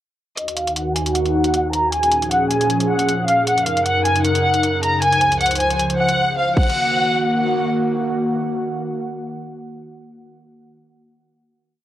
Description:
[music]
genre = hip hop, trap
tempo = 155 BPM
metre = 4/4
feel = half-time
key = Eb dorian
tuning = A4 = 439 Hz
[part]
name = warm studio violin section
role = melody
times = 0.4-7.7 s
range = Eb5 to Bb5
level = -18 LUFS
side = equal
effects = low-pass filter
[part]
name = airy breathy pad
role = sustained chords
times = 0.4-10.4 s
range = Db2 to Gb5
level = -20 LUFS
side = equal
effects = chorus, low-pass filter, cassette tape
[part]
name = trap drum kit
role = drums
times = 0.4-6.8 s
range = crash cymbal, hi-hat, kick drum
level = -24 LUFS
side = equal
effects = cassette tape
[sound]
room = little or no reverb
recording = home recording on cassette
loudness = -16 LUFS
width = side -12 dB against mid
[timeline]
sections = 0.4-6.6 breakdown; 6.6-9.7 final chord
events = filter sweep 0.4-6.6; drums muted 6.2-6.6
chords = 0.4 Ebm; 1.9 Bbm7; 3.5 Gb6; 5.0 Dbmaj7; 6.6 Ebm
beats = | 0.37 0.76 1.15 1.54 | 1.92 2.31 2.70 3.08 | 3.47 3.86 4.25 4.63 | 5.02 5.41 5.79 6.18 | 6.57 6.96 7.34 7.73 | 8.12 8.50 8.89 9.28

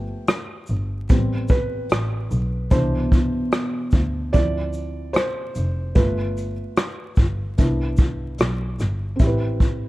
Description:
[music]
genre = lo-fi hip hop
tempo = 74 BPM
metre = 4/4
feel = swing 55% on 16ths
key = C major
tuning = A4 = 439 Hz
[part]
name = felt-muted upright piano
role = accompaniment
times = 0.0-9.9 s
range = B2 to D5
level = -26 LUFS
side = right 1 dB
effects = none
[part]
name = muted double bass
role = bass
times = 0.0-9.8 s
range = F1 to D2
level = -25 LUFS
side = equal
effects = none
[part]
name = vintage brush drum kit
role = drums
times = 0.3-9.8 s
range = hi-hat, kick drum, rim click, shaker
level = -20 LUFS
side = equal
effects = vintage 12-bit sampler grit
[sound]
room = small room ambience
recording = vinyl crackle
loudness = -19 LUFS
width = side -18 dB against mid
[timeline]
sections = 0.0-9.2 A section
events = felt piano solo 0.0-9.2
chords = 0.0 G7; 1.1 Am7; 2.7 Cmaj7; 4.3 Dm7; 6.0 G7; 7.6 Cmaj7; 9.2 Am9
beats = 0.28 1.09 1.90 | 2.71 3.52 4.34 5.15 | 5.96 6.77 7.58 8.39 | 9.20

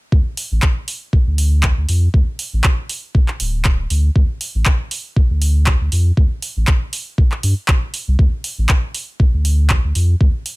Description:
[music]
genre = acid house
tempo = 119 BPM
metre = 4/4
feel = swing 56% on 16ths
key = D minor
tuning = A4 = 440 Hz
[part]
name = warm sub bass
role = bass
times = 0.1-10.3 s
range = D1 to G2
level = -15 LUFS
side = equal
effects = sidechain pumping
[part]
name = electronic kick drum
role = drums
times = 0.1-10.3 s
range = none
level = -14 LUFS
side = equal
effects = studio reverb
[part]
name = punchy analog drum machine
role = drums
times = 0.4-10.6 s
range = handclaps, hi-hat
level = -22 LUFS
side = equal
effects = overdrive, studio reverb
[sound]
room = little or no reverb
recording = none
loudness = -14 LUFS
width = side -24 dB against mid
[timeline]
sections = 0.1-10.6 A section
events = none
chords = none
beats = | 0.12 0.63 1.13 1.64 | 2.14 2.64 3.15 3.65 | 4.16 4.66 5.16 5.67 | 6.17 6.68 7.18 7.68 | 8.19 8.69 9.20 9.70 | 10.21

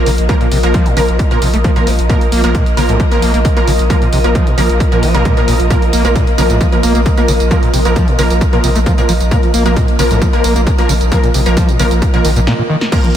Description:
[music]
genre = driving peak-time techno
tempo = 133 BPM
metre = 4/4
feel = straight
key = unclear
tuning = A4 = 440 Hz
[part]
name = rave stab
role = stabs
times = 0.0-13.1 s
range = F3 to Bb4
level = -17 LUFS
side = right 1 dB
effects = chorus, built-in reverb, sidechain pumping, analog delay
[part]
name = airy breathy pad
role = texture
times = 0.0-13.2 s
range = F4 to Eb5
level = -20 LUFS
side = equal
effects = chorus, phaser, sidechain pumping
[part]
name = overdriven acid bass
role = riff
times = 0.1-13.2 s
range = A2 to Bb3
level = -18 LUFS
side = equal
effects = distortion, lush chorus, sidechain pumping, analog delay
[part]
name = saturated sub bass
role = bass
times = 0.1-13.2 s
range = Bb1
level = -16 LUFS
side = equal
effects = overdrive, sidechain pumping, low-pass filter
[part]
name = techno drum kit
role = drums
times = 0.1-13.1 s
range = crash cymbal, hi-hat, snare drum, tambourine, toms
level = -23 LUFS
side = right 1 dB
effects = overdrive, sidechain pumping on hats, sidechain pumping on perc, sidechain pumping on cymbals, sidechain pumping on toms
[part]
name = electronic kick drum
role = drums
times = 0.3-13.0 s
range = none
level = -13 LUFS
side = equal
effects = overdrive
[part]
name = overtone-sweeping drone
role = drone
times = 12.9-13.2 s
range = none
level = barely audible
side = none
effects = none
[sound]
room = light reverb, digital ambience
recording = none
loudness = -10 LUFS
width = side -10 dB against mid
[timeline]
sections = 0.0-12.9 A section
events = filter sweep on acid bass 0.0-12.9; break 12.5-12.9; drum fill 12.5-12.9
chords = 0.0 Bb5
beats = | 0.29 0.74 1.19 1.64 | 2.10 2.55 3.00 3.45 | 3.90 4.35 4.80 5.25 | 5.70 6.16 6.61 7.06 | 7.51 7.96 8.41 8.86 | 9.31 9.76 10.21 10.67 | 11.12 11.57 12.02 12.47 | 12.92

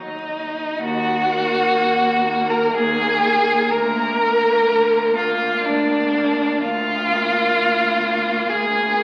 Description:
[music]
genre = classical, slow romantic movement for string quartet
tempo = 62 BPM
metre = 3/4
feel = rubato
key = Eb minor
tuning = A4 = 440 Hz
[part]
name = warm violin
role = melody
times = 0.0-9.0 s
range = D5 to Bb5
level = -28 LUFS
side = equal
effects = none
[part]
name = rich violin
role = second line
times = 0.0-9.0 s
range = D4 to Bb4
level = -21 LUFS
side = equal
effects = none
[part]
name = rich viola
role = accompaniment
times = 0.0-9.0 s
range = Gb3 to Bb3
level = -28 LUFS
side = equal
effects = none
[part]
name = rich cello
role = bass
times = 0.0-9.0 s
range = D2 to Eb2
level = -30 LUFS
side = equal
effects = none
[sound]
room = wet recital hall reverb, RT60 1.3 s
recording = very old 78 rpm record, vinyl crackle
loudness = -19 LUFS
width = mono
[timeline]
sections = 0.8-9.0 A section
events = none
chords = 0.0 Ebm; 3.7 Bb/D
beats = | 0.80 1.77 2.75 | 3.72 4.68 5.65 | 6.62 7.56 8.49

